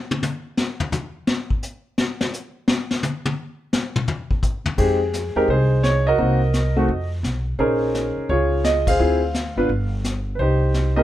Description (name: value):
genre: jazz piano trio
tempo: 171 BPM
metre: 4/4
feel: swing 65% on 8ths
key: F minor from 4.8 s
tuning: A4 = 440 Hz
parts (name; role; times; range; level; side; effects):
- vintage brush drum kit; drums; 0.1-11.0 s; brushed snare drum, crash cymbal, hi-hat, kick drum, ride cymbal, snare drum, toms; -22 LUFS; left 2 dB; none
- upright bass; bass; 4.6-11.0 s; G1 to F2; -21 LUFS; equal; none
- warm concert grand piano; melody; 4.8-11.0 s; Ab3 to F5; -20 LUFS; equal; none
room: light reverb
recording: none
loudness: -19 LUFS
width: side -13 dB against mid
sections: 0.0-4.8 A section; 4.8-11.0 B section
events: grand piano solo 0.0-4.8; drum solo 0.0-4.8; band accent 8.8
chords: 0.0 N.C.; 4.8 Fm9; 6.2 Cm7b5; 6.9 N.C.; 7.6 Bbm11; 9.0 Dm7b5; 9.7 N.C.; 10.4 Cm